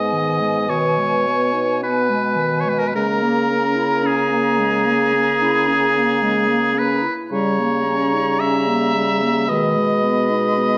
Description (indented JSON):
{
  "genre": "classical, slow romantic movement for wind quintet",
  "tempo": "54 BPM",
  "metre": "4/4",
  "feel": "rubato",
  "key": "G# minor",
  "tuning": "A4 = 443 Hz",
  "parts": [
    { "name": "silver concert flute", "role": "melody", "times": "0.0-10.8 s", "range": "G#5 to B5", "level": "-29 LUFS", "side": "equal", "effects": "none" },
    { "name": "bright oboe", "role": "second line", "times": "0.0-10.8 s", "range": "G#4 to E5", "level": "-22 LUFS", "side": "equal", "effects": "none" },
    { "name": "mellow clarinet", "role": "accompaniment", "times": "0.0-10.8 s", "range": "D#3 to E4", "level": "-26 LUFS", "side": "equal", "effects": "none" },
    { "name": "warm French horn", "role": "accompaniment", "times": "0.0-10.8 s", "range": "G3 to B3", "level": "-29 LUFS", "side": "equal", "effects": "none" },
    { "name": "dark bassoon", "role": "bass", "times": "0.0-10.8 s", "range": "G#2 to C#3", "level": "-24 LUFS", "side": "equal", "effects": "none" }
  ],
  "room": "wet recital hall reverb, RT60 1.3 s",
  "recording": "none",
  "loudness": "-18 LUFS",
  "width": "mono",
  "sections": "0.0-10.8 A section",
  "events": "none",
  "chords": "0.0 G#m; 0.7 G#m/B; 3.0 A#m7b5/C#; 7.3 D#7/C#; 9.5 G#m/B",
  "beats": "0.70 1.84 | 2.96 4.06 5.17 6.25 | 7.33 8.40 9.49 10.61"
}